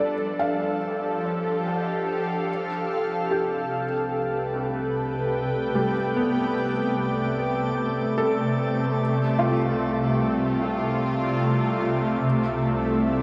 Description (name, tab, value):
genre	ambient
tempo	74 BPM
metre	4/4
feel	straight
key	unclear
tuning	A4 = 439 Hz
part	shimmering ambient pad	sustained chords	0.0-13.2 s	C3 to G5	-26 LUFS	equal	chorus, built-in reverb
part	felt-muted upright piano	arpeggios	0.0-12.4 s	G3 to F5	-32 LUFS	equal	diffuse ambient delay
part	dark symphonic cello section	bass	2.5-13.2 s	C2	-38 LUFS	equal	none
part	drifting glass-harmonics texture	texture	4.4-13.2 s	D5 to D6	-39 LUFS	equal	chorus, built-in reverb
room	wet cathedral reverb, RT60 5.3 s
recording	dark, warm production, nothing above 10.6 kHz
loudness	-25 LUFS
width	mono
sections	0.0-2.5 A section; 2.5-13.2 B section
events	fade-in on cello section 2.5-13.2; fade-in on synth texture 2.5-13.2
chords	0.0 F69; 2.5 Gadd9/C; 9.0 Dm7/C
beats	0.81 1.65 | 2.48 3.31 4.12 4.94 | 5.76 6.57 7.38 8.19 | 9.00 9.81 10.62 11.43 | 12.25 13.06